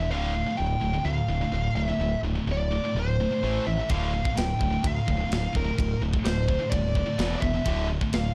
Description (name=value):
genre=heavy metal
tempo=127 BPM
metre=4/4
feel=straight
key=D minor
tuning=A4 = 438 Hz
part: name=high-gain lead guitar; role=melody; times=0.0-8.3 s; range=Bb4 to G5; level=-33 LUFS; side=equal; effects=distortion
part: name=heavy high-gain guitar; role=riff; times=0.0-8.3 s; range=D2 to A3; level=-35 LUFS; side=equal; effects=distortion
part: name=high-gain distorted guitar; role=riff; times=0.0-8.3 s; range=D2 to A3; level=-34 LUFS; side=equal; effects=distortion
part: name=growling fingered electric bass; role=bass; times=0.0-8.3 s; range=D1 to D2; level=-31 LUFS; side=equal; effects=overdrive
part: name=tight metal drum kit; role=drums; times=3.9-8.2 s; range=kick drum, ride cymbal, snare drum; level=-32 LUFS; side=equal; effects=none
room=light reverb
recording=dark, warm production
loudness=-26 LUFS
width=mono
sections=0.0-8.3 A section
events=none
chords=0.1 Dm; 3.4 A5; 3.9 Dm; 7.2 E5; 7.7 Dm